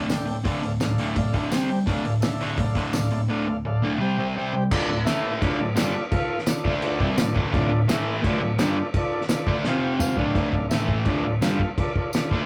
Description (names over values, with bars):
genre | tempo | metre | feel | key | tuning
garage rock duo or trio | 169 BPM | 4/4 | straight | D minor | A4 = 440 Hz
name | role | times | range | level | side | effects
combo organ | sustained chords | 0.0-12.4 s | E4 to G5 | -32 LUFS | equal | none
crunchy overdriven guitar | riff | 0.0-12.5 s | D2 to D4 | -26 LUFS | equal | none
cloth-damped thuddy drum kit | drums | 0.1-12.4 s | crash cymbal, hi-hat, kick drum, snare drum, toms | -28 LUFS | equal | none
tambourine | percussion | 0.1-12.2 s | none | -40 LUFS | equal | none
room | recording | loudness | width
moderate small room reverb, RT60 0.5 s | rough rehearsal-room recording, warm saturation | -24 LUFS | mono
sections
0.0-4.7 A section; 4.7-10.4 B section; 10.4-12.5 C section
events
drum fill 9.7-10.4; transistor combo organ fill 9.7-10.4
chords
0.0 Dm; 1.5 C5; 1.9 Dm; 4.0 C5; 4.7 Dm; 5.1 A5; 5.4 Dm; 7.9 A5; 8.2 Dm; 9.7 F5; 10.2 Dm; 10.7 A5; 11.1 Dm